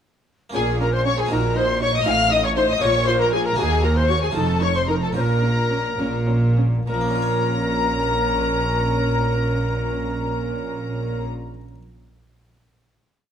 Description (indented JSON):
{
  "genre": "classical, baroque-style concerto movement with solo episodes",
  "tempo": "66-80 BPM (dotted quarters)",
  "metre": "6/8",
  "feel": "straight",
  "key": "Bb minor",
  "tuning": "A4 = 442 Hz",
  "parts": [
    { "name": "alto recorder", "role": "melody", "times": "0.5-11.2 s", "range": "Ab4 to Ab5", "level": "-26 LUFS", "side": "equal", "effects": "none" },
    { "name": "rich chamber violin section", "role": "melody", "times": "0.5-11.2 s", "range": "Ab5 to F6", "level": "-26 LUFS", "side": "left 4 dB", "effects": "none" },
    { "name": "warm symphonic violin section", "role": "second line", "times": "0.5-11.2 s", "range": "Ab4 to Bb5", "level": "-26 LUFS", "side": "left 3 dB", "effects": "none" },
    { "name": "dark studio viola section", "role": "accompaniment", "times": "0.5-11.2 s", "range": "Db4 to Gb4", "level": "-30 LUFS", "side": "right 1 dB", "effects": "none" },
    { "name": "harpsichord", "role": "accompaniment", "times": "0.5-11.8 s", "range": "Eb2 to Db5", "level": "-31 LUFS", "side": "left 1 dB", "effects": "none" },
    { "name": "dark chamber cello section", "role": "bass", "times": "0.5-11.2 s", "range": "Eb2 to Bb2", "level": "-26 LUFS", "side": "right 2 dB", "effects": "none" },
    { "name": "warm chamber double bass section", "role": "bass", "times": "0.5-11.2 s", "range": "F1 to Eb2", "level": "-25 LUFS", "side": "right 2 dB", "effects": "none" }
  ],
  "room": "moderate recital hall reverb, RT60 1.5 s",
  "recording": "none",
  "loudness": "-18 LUFS",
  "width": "side -8 dB against mid",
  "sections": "0.5-6.9 ritornello; 6.9-10.5 final chord",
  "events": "slowing down 2.8-6.9",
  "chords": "0.5 Bbm; 1.3 Cm7b5/Bb; 2.1 F7/A; 2.8 Bbm; 3.6 Ebm; 4.4 F7b13; 5.2 Bbm",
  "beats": "| 0.55 1.31 | 2.07 2.82 | 3.58 4.36 | 5.16 5.99 | 6.88 7.78 | 8.68 9.57"
}